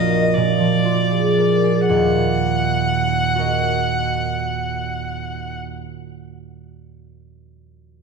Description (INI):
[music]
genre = classical, romantic duo for violin and harp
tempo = 36-45 BPM (dotted quarters)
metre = 6/8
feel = rubato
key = Eb minor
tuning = A4 = 440 Hz
[part]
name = rich violin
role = melody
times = 0.0-5.6 s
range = D5 to Gb5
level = -22 LUFS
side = left 2 dB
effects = none
[part]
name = concert harp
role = accompaniment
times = 0.0-6.3 s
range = Bb1 to Eb5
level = -19 LUFS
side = right 3 dB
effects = none
[sound]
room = wet scoring stage reverb, RT60 1.9 s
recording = heard from further back in the room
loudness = -17 LUFS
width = side -4 dB against mid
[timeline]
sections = 0.0-1.9 A section; 1.9-4.8 B section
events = slowing down 0.0-1.9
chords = 0.4 Bb7; 1.9 Ebm